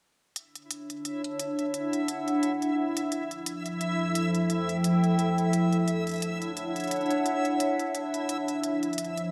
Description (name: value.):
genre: IDM.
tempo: 87 BPM.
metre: 4/4.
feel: swing 56% on 16ths.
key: D major.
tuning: A4 = 441 Hz.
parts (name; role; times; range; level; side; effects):
warbly tape-like pad; sustained chords; 0.8-9.3 s; F3 to G5; -29 LUFS; equal; chorus, built-in reverb.
electronic hi-hat; drums; 0.4-9.3 s; none; -38 LUFS; equal; studio reverb.
backwards swelling texture; texture; 1.1-9.3 s; E4 to E5; -36 LUFS; equal; built-in reverb.
room: moderate lush hall reverb, RT60 2.8 s.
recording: dark, warm production.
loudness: -28 LUFS.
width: mono.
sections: 0.4-9.3 A section.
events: filter sweep on ambient pad 0.4-9.3.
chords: 0.4 Dmaj9; 3.1 Fmaj9; 5.9 Dmaj9; 8.6 Fmaj7.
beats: | 0.36 1.05 1.74 2.43 | 3.12 3.81 4.50 5.19 | 5.88 6.57 7.26 7.95 | 8.64.